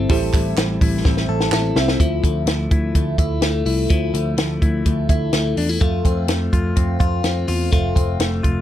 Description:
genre	jangly indie pop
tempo	126 BPM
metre	4/4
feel	straight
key	D minor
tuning	A4 = 443 Hz
part	warm upright piano	accompaniment	0.0-2.0 s	E4 to A5	-27 LUFS	right 8 dB	plate reverb
part	direct-recorded clean electric guitar	arpeggios	0.0-8.6 s	F3 to A4	-22 LUFS	left 3 dB	phaser, tape echo, plate reverb
part	vintage muted picked electric bass	bass	0.0-8.6 s	F1 to F2	-22 LUFS	equal	none
part	compact cocktail drum kit	drums	0.1-8.6 s	hi-hat, kick drum, snare drum	-19 LUFS	equal	none
part	group handclap	percussion	0.3-1.6 s	none	-28 LUFS	right 9 dB	none
room	little or no reverb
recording	none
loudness	-16 LUFS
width	side -12 dB against mid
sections	0.0-2.0 A section; 2.0-8.6 B section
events	drum fill 1.0-2.0; upright piano fill 1.3-2.0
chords	0.0 Am7; 2.0 Dmadd9; 5.8 F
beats	| 0.10 0.57 1.05 1.52 | 2.00 2.48 2.95 3.43 | 3.90 4.38 4.86 5.33 | 5.81 6.29 6.77 7.24 | 7.72 8.20

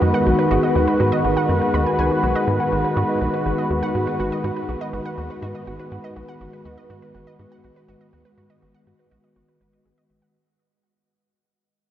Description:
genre	ambient, sequencer-driven space music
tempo	122 BPM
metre	4/4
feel	straight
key	G# minor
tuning	A4 = 438 Hz
part	sweeping resonant pad	sustained chords	0.0-10.3 s	D#3 to B4	-20 LUFS	equal	chorus
part	wide unison pluck	arpeggios	0.0-10.3 s	F#4 to B5	-29 LUFS	right 2 dB	auto-pan, tape echo
part	tight sequencer bass	riff	0.0-10.2 s	G#1 to G#2	-25 LUFS	equal	tape echo
room	wet huge ambient reverb, RT60 7.6 s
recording	worn, warbling old tape, cassette tape, warbly pitch drift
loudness	-18 LUFS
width	side -11 dB against mid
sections	0.0-10.3 A section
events	fade-out on analog synth bass 0.0-10.3; fade-out on synth arpeggio sound 0.0-10.3; fade-out 0.0-10.3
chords	0.0 G#m7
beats	0.01 | 0.51 1.00 1.49 1.98 | 2.47 2.97 3.46 3.95 | 4.44 4.93 5.42 5.92 | 6.41 6.90 7.39 7.88 | 8.38 8.87 9.36 9.85

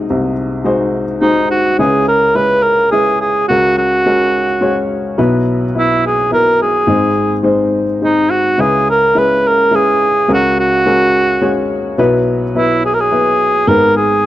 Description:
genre	acoustic folk-pop ballad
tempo	106 BPM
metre	3/4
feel	straight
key	C# dorian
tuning	A4 = 438 Hz
part	warm upright piano	accompaniment	0.0-14.3 s	G#1 to C#5	-15 LUFS	left 2 dB	none
part	mellow cor anglais	melody	1.2-14.3 s	D#4 to B4	-12 LUFS	right 1 dB	none
room	small room ambience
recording	dry, close 1970s-style studio recording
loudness	-11 LUFS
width	side -14 dB against mid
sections	0.0-1.8 A section; 1.8-14.3 B section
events	none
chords	0.0 G#7/B#; 1.8 C#m7; 3.5 F#add9/C#; 5.2 Bsus4; 6.9 G#; 8.6 C#m7; 10.3 F#add9/C#; 12.0 Bsus4; 13.7 G#m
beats	| 0.09 0.65 1.22 | 1.78 2.35 2.92 | 3.49 4.06 4.62 | 5.18 5.75 6.31 | 6.88 7.45 8.02 | 8.59 9.15 9.72 | 10.29 10.85 11.42 | 11.98 12.55 13.11 | 13.68 14.25

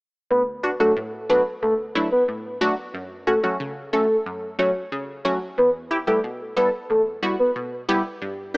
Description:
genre	dancehall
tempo	91 BPM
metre	4/4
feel	straight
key	D major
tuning	A4 = 440 Hz
part	soft octave-layered synth lead	melody	0.3-8.6 s	A4 to C#5	-21 LUFS	equal	chorus, tape echo
part	punchy chord stab	accompaniment	0.3-8.6 s	D2 to A4	-25 LUFS	equal	chorus
room	light reverb, digital ambience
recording	small speaker sound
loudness	-20 LUFS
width	side -29 dB against mid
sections	0.3-8.6 A section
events	none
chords	0.3 D; 2.9 F#m; 5.6 Em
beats	| 0.31 0.96 1.62 2.28 | 2.94 3.60 4.26 4.92 | 5.58 6.24 6.90 7.56 | 8.22

